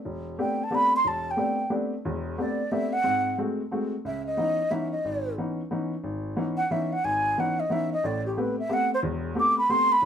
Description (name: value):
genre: jazz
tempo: 180 BPM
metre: 3/4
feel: swing 63% on 8ths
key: unclear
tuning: A4 = 440 Hz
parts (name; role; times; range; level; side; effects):
- warm upright piano; accompaniment; 0.1-10.1 s; E1 to G4; -28 LUFS; left 1 dB; none
- breathy mellow concert flute; melody; 0.4-10.1 s; G4 to D6; -24 LUFS; right 1 dB; none
room: moderate studio reverb, RT60 0.5 s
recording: band playing live in one room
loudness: -24 LUFS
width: side -8 dB against mid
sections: 0.0-4.0 A section; 4.0-10.1 B section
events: flute solo 4.0-10.1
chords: 0.0 Am11; 3.0 G#7b9; 4.0 C#m9; 8.0 Am9